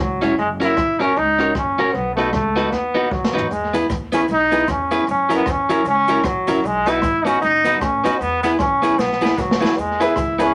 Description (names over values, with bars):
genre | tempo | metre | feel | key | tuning
ska | 153 BPM | 4/4 | swing 59% on 8ths | E major | A4 = 440 Hz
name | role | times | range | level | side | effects
brilliant trombone | melody | 0.0-10.5 s | F#3 to E4 | -21 LUFS | equal | none
upright bass | bass | 0.0-10.5 s | E1 to F#2 | -32 LUFS | equal | none
electric guitar at the edge of break-up | accompaniment | 0.2-10.5 s | F#3 to C#5 | -23 LUFS | equal | none
jazz brush drum kit | drums | 0.2-10.5 s | hi-hat, kick drum, rim click, snare drum, toms | -27 LUFS | equal | tape echo
cabasa | percussion | 3.5-10.5 s | none | -49 LUFS | equal | tape echo
clear upright piano | stabs | 10.0-10.5 s | E4 to B4 | -23 LUFS | equal | none
room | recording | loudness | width
moderate club reverb, RT60 0.5 s | none | -18 LUFS | mono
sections
0.0-10.5 A section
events
drum fill 2.7-3.5, 9.0-9.8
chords
0.4 F#; 1.9 B; 3.5 E; 5.1 F#7; 6.6 B; 8.2 E